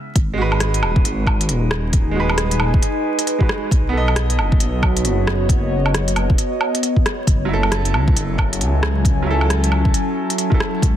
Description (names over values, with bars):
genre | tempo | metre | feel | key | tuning
future garage | 135 BPM | 4/4 | swing 62% on 16ths | F# dorian | A4 = 440 Hz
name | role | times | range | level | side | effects
swelling detuned saw bass | bass | 0.2-11.0 s | D#1 to C#2 | -20 LUFS | equal | sidechain pumping
electronic kick drum | drums | 0.2-10.9 s | none | -17 LUFS | equal | none
organic electronic drum kit | drums | 0.2-10.9 s | hi-hat, rim click, woodblock | -23 LUFS | equal | soft clipping on snare
clear upright piano | accompaniment | 0.3-10.8 s | F#3 to D#5 | -24 LUFS | right 4 dB | sidechain pumping, digital delay
warbly tape-like pad | sustained chords | 1.4-11.0 s | C#3 to G#5 | -24 LUFS | left 1 dB | chorus, built-in reverb, phaser, sidechain pumping
room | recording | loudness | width
light reverb | dense, heavily limited modern master, vinyl crackle | -16 LUFS | side -11 dB against mid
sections
0.2-11.0 A section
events
break 0.0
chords
0.2 G#m7; 3.7 B7; 7.3 F#m7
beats
| 0.16 0.60 1.05 1.49 | 1.94 2.38 2.83 3.27 | 3.71 4.16 4.60 5.05 | 5.49 5.94 6.38 6.83 | 7.27 7.71 8.16 8.60 | 9.05 9.49 9.94 10.38 | 10.83